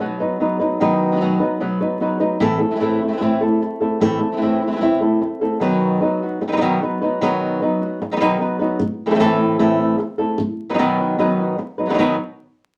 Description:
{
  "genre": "flamenco",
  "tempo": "150 BPM",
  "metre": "4/4",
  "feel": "straight",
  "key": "unclear",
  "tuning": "A4 = 440 Hz",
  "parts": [
    { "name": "flamenco guitar", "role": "melody", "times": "0.0-12.1 s", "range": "A2 to B4", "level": "-20 LUFS", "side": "equal", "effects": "none" },
    { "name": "flamenco guitar", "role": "stabs", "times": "0.0-12.2 s", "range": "A2 to F#4", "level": "-24 LUFS", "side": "equal", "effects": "none" }
  ],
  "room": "wet small room reverb, RT60 0.5 s",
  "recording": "vinyl crackle",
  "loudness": "-19 LUFS",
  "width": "mono",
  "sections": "0.0-12.0 A section",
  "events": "none",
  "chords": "0.0 B; 2.4 Am; 5.6 B; 8.8 Am; 10.4 B"
}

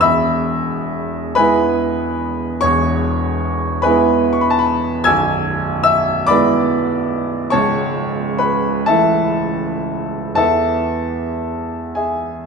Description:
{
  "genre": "classical, romantic nocturne for solo piano",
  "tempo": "37-51 BPM (dotted quarters)",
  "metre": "12/8",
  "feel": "rubato",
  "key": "E major, A major from 5.1 s",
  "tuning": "A4 = 440 Hz",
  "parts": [
    { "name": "warm baby grand piano", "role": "solo", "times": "0.0-12.5 s", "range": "B0 to G#6", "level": "-15 LUFS", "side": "equal", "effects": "none" }
  ],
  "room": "wet recital hall reverb, RT60 1.7 s",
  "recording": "minimal, uncompressed stereo recording",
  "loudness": "-15 LUFS",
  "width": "side -5 dB against mid",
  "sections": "0.0-12.5 A section",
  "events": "none",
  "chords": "0.0 E; 5.1 E7/B; 7.5 A/C#; 10.4 E"
}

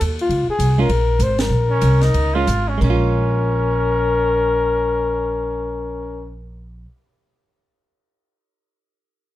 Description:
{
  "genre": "jazz, small-group swing and bop",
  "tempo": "173-204 BPM",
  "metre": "4/4",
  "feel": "swing 62% on 8ths",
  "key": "Bb minor",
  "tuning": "A4 = 443 Hz",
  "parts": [
    { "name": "mellow flugelhorn", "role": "melody", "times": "0.0-6.3 s", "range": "F4 to C5", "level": "-20 LUFS", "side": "left 4 dB", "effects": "plate reverb" },
    { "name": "upright bass", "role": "bass", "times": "0.0-6.8 s", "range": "Ab1 to Eb2", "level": "-20 LUFS", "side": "equal", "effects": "none" },
    { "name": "compact cocktail drum kit", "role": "drums", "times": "0.0-5.5 s", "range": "crash cymbal, cymbal swell, hi-hat, kick drum, ride cymbal, snare drum", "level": "-29 LUFS", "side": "equal", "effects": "none" },
    { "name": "hollow-body jazz guitar", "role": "accompaniment", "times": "0.8-7.0 s", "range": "Ab3 to F4", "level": "-23 LUFS", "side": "right 4 dB", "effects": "none" },
    { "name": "growling trumpet", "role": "second line", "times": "1.7-6.4 s", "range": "Db4 to F4", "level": "-25 LUFS", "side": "right 3 dB", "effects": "none" }
  ],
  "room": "moderate studio reverb, RT60 0.8 s",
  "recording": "dark, warm production",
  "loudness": "-16 LUFS",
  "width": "side -14 dB against mid",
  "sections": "0.0-2.8 A section; 2.8-5.6 B section",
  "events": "slowing down 0.3-2.8; band accent 1.4",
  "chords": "0.3 Bbm7"
}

